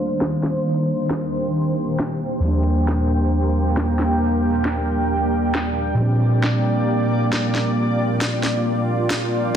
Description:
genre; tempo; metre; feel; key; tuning
future garage; 135 BPM; 4/4; swing 61% on 16ths; unclear; A4 = 441 Hz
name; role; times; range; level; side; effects
muted felt-like synth keys; accompaniment; 0.0-9.5 s; Eb2 to D4; -21 LUFS; right 1 dB; chorus, sidechain pumping, dub echo
granular cloud pad; sustained chords; 0.0-9.6 s; Eb3 to G5; -21 LUFS; equal; built-in reverb, sidechain pumping
electronic snare drum; drums; 0.2-9.2 s; none; -24 LUFS; equal; studio reverb
room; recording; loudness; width
wet digital room reverb, RT60 1.0 s; dense, heavily limited modern master, low-pass filter; -18 LUFS; side -8 dB against mid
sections
0.0-9.5 A section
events
filter sweep on ambient pad 0.0-9.5; filter sweep 0.0-9.5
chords
0.0 Cm7/Eb; 6.0 Bb6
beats
0.22 | 0.66 1.10 1.55 1.99 | 2.44 2.88 3.33 3.77 | 4.22 4.66 5.11 5.55 | 5.99 6.44 6.88 7.33 | 7.77 8.22 8.66 9.11 | 9.55

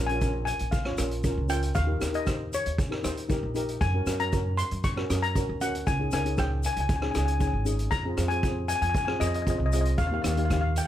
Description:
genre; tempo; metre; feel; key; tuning
calypso; 117 BPM; 4/4; straight; unclear; A4 = 441 Hz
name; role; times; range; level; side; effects
steel pan; melody; 0.0-10.8 s; Db5 to Db6; -31 LUFS; left 3 dB; plate reverb
steel pan; accompaniment; 0.0-10.9 s; Bb3 to Db5; -32 LUFS; left 1 dB; none
upright bass; bass; 0.0-10.8 s; Ab1 to Gb2; -29 LUFS; right 1 dB; none
street-band drum kit; drums; 0.1-10.9 s; hi-hat, kick drum, rim click; -31 LUFS; right 1 dB; none
egg shaker; percussion; 0.2-10.9 s; none; -42 LUFS; left 2 dB; none
room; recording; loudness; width
light reverb; none; -25 LUFS; side -11 dB against mid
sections
0.0-10.9 A section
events
none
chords
0.0 Bbm; 1.8 Eb; 3.8 Gb; 5.9 Dbsus2; 7.9 Fm; 10.0 Eb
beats
0.22 0.73 1.24 | 1.76 2.27 2.78 3.30 | 3.81 4.32 4.84 5.35 | 5.87 6.38 6.90 7.41 | 7.93 8.44 8.96 9.47 | 9.99 10.51

